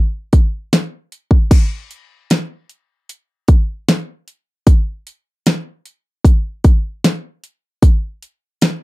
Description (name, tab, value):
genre	pop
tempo	76 BPM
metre	4/4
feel	straight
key	none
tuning	none
part	pop drum kit	drums	0.3-8.8 s	crash cymbal, hi-hat, kick drum, snare drum	-11 LUFS	equal	none
room	little or no reverb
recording	dry, close 1970s-style studio recording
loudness	-14 LUFS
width	side -20 dB against mid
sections	0.0-1.5 A section; 1.5-8.8 B section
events	none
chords	none